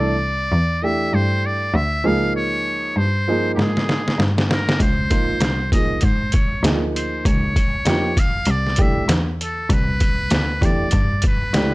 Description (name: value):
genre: hip hop, jazz-hop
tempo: 98 BPM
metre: 4/4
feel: swing 60% on 16ths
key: unclear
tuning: A4 = 441 Hz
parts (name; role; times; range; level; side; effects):
- trumpet with metal mute; melody; 0.0-11.7 s; G4 to F5; -24 LUFS; equal; none
- dark upright piano; accompaniment; 0.0-11.7 s; Eb3 to A4; -23 LUFS; right 2 dB; none
- warm cello; bass; 0.0-11.7 s; C2 to Ab2; -22 LUFS; equal; none
- trip hop sampler-style drum kit; drums; 3.6-11.7 s; hi-hat, kick drum, snare drum; -19 LUFS; equal; overdrive
room: studio reverb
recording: dry, gritty hardware recording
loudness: -17 LUFS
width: side -21 dB against mid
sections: 0.0-11.7 A section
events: drum fill 3.6-4.8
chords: 0.0 Cadd9; 2.0 Dbmaj9; 8.5 Cmaj9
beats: 0.52 1.13 1.74 | 2.35 2.97 3.58 4.19 | 4.80 5.42 6.03 6.64 | 7.25 7.87 8.48 9.09 | 9.70 10.31 10.93 11.54